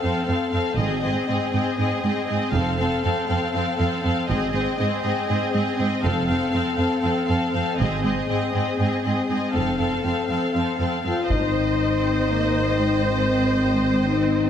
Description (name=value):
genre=cinematic, epic orchestral film score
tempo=240 BPM (eighths)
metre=7/8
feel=straight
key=Ab major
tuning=A4 = 437 Hz
part: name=rich symphonic violin section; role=melody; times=0.0-14.5 s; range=Eb5 to F5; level=-29 LUFS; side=left 3 dB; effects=none
part: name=rich symphonic violin section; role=second line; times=0.0-14.5 s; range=Ab4 to C5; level=-30 LUFS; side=left 2 dB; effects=none
part: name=rich symphonic viola section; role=accompaniment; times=0.0-14.5 s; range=C4 to C5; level=-27 LUFS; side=equal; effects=none
part: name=mellow French horn section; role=sustained chords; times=0.0-14.5 s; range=C4 to A4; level=-26 LUFS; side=left 4 dB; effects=none
part: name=warm symphonic cello section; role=bass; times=0.0-14.5 s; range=F2 to C4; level=-26 LUFS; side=right 2 dB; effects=none
part: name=rich symphonic double bass section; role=bass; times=0.8-14.5 s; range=F1 to Ab1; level=-27 LUFS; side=right 3 dB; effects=none
part: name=warm trombone section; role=sustained chords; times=11.3-14.5 s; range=Eb3 to C4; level=-33 LUFS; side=right 3 dB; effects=none
part: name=taiko ensemble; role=drums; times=11.3-12.3 s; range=none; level=-27 LUFS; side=equal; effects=none
room=wet recital hall reverb, RT60 1.5 s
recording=heavily compressed radio sound, multiband compression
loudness=-20 LUFS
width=side -9 dB against mid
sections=0.0-11.3 A section; 11.3-14.5 B section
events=build-up 0.0-11.3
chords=0.0 F; 0.8 Ab; 2.5 F; 4.3 Ab; 6.0 F; 7.8 Ab; 9.5 F; 11.3 Ab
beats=0.03 0.28 0.54 | 0.79 1.04 1.29 1.54 1.79 2.04 2.29 | 2.54 2.79 3.04 3.29 3.54 3.79 4.04 | 4.29 4.54 4.79 5.04 5.29 5.54 5.79 | 6.04 6.29 6.54 6.79 7.04 7.29 7.54 | 7.79 8.04 8.29 8.54 8.79 9.04 9.29 | 9.54 9.79 10.05 10.30 10.55 10.80 11.05 | 11.30 11.55 11.80 12.05 12.30 12.55 12.80 | 13.05 13.30 13.55 13.80 14.05 14.30